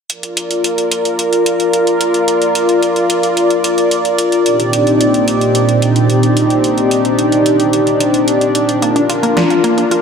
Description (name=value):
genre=synthwave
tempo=110 BPM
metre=4/4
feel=straight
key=Bb major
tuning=A4 = 437 Hz
part: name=warm analog pad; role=sustained chords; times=0.1-10.0 s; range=Bb2 to D5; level=-11 LUFS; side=equal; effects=chorus
part: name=pop drum kit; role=drums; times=0.1-10.0 s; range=hi-hat, snare drum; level=-20 LUFS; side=right 1 dB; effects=none
part: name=wide unison pluck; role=arpeggios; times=8.8-10.0 s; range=Bb3 to F4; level=-16 LUFS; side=right 2 dB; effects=ping-pong delay
room=wet plate reverb, RT60 2.5 s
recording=dreamy mix soaked in reverb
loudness=-11 LUFS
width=side -6 dB against mid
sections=0.1-10.0 A section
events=none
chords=0.1 Bb; 4.5 Cmadd9/Bb; 8.8 Bb